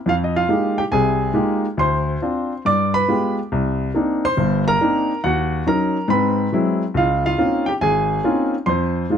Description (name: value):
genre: solo jazz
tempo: 140 BPM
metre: 4/4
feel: swing 66% on 8ths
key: unclear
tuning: A4 = 440 Hz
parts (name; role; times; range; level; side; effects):
- warm baby grand piano; solo; 0.1-9.2 s; G1 to D6; -17 LUFS; equal; none
room: light reverb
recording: close, detailed microphones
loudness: -17 LUFS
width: side -8 dB against mid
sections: 0.0-9.2 A section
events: none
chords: 0.1 Fm11; 1.8 Dm7; 2.6 G7b9; 3.5 Cm9; 5.2 Ebm7; 6.1 Ab7alt; 6.9 Dbmaj13; 8.7 Fm7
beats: | 0.06 0.49 0.92 1.35 | 1.78 2.21 2.64 3.07 | 3.50 3.94 4.37 4.80 | 5.23 5.66 6.09 6.52 | 6.95 7.38 7.80 8.23 | 8.66 9.09